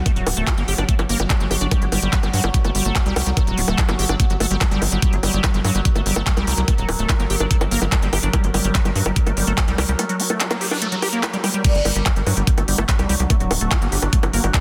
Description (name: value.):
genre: psychedelic trance.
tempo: 145 BPM.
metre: 4/4.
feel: straight.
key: G harmonic minor.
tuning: A4 = 440 Hz.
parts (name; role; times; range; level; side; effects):
overtone-sweeping drone; sustained chords; 0.0-14.6 s; F#3 to Bb4; -30 LUFS; equal; chorus, built-in reverb, sidechain pumping.
tight sequencer bass; bass; 0.0-14.5 s; D1 to G2; -24 LUFS; equal; none.
liquid acid bass; riff; 0.1-14.6 s; F#3 to G4; -28 LUFS; equal; chorus, sidechain pumping, dub echo.
drum and bass drum kit; drums; 0.1-14.6 s; bongos, crash cymbal, handclaps, hi-hat; -26 LUFS; equal; none.
electronic kick drum; drums; 0.1-14.6 s; none; -21 LUFS; equal; none.
noise sweep; sound effects; 10.6-11.6 s; none; -34 LUFS; equal; none.
oud; melody; 11.6-14.6 s; C4 to G4; -33 LUFS; equal; none.
ethereal airy pad; texture; 12.5-14.6 s; D4; -40 LUFS; equal; none.
room: light reverb.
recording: dense, heavily limited modern master.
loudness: -19 LUFS.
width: mono.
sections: 0.0-11.6 A section; 11.6-14.6 B section.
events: noise sweep 10.6-11.6; drop 11.6-14.6.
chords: 0.0 G5.